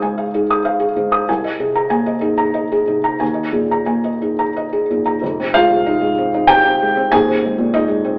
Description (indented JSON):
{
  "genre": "neoclassical minimalist piano",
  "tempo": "92 BPM",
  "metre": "3/4",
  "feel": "uneven beats, rubato",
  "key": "Ab major",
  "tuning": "A4 = 441 Hz",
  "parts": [
    { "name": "felt-muted upright piano", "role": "solo", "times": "0.0-8.2 s", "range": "Eb1 to Eb6", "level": "-17 LUFS", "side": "equal", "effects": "none" }
  ],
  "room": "wet stone room reverb, RT60 1.0 s",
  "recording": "band playing live in one room, AM radio sound",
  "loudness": "-17 LUFS",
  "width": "mono",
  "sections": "0.0-5.2 A section; 5.2-8.2 B section",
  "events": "none",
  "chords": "0.0 Dbadd9; 1.3 Abadd9/C; 3.2 Ebsus4; 5.2 Fm7; 7.1 Abadd9/Eb"
}